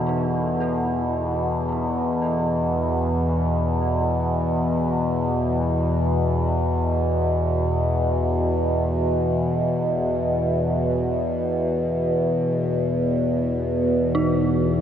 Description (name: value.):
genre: ambient.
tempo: free time.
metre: none.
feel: none.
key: unclear.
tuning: A4 = 440 Hz.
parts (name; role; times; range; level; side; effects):
dark detuned synth bell; arpeggios; 0.0-14.8 s; D#4 to A4; -31 LUFS; right 2 dB; chorus, tape echo.
overtone-sweeping drone; drone; 0.0-14.8 s; E2 to B2; -20 LUFS; equal; chorus, built-in reverb.
dark analog pad; sustained chords; 13.0-14.8 s; E3 to B3; -24 LUFS; right 1 dB; chorus.
room: wet huge ambient reverb, RT60 8.0 s.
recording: none.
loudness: -20 LUFS.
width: side -9 dB against mid.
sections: 0.0-14.8 A section.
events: none.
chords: 0.0 E5.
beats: free time.